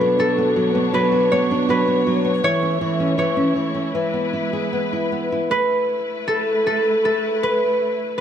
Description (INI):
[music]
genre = children's music, lullaby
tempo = 79 BPM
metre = 4/4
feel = rubato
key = A major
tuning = A4 = 440 Hz
[part]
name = concert harp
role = melody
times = 0.0-8.2 s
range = A4 to C#5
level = -20 LUFS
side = equal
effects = none
[part]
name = nylon-string guitar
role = accompaniment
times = 0.0-5.5 s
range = B2 to G#4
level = -20 LUFS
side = equal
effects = none
[part]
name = muted studio string section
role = sustained chords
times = 0.0-8.2 s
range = E3 to C#5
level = -26 LUFS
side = equal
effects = none
[sound]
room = light reverb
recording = close, detailed microphones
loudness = -17 LUFS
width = side -8 dB against mid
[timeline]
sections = 0.0-5.5 A section; 5.5-8.2 B section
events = none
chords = 0.0 Bmadd9; 2.4 A/E; 3.9 E; 5.5 Asus2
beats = 0.19 0.93 1.68 | 2.43 3.18 3.94 4.73 | 5.51 6.28 7.04 7.80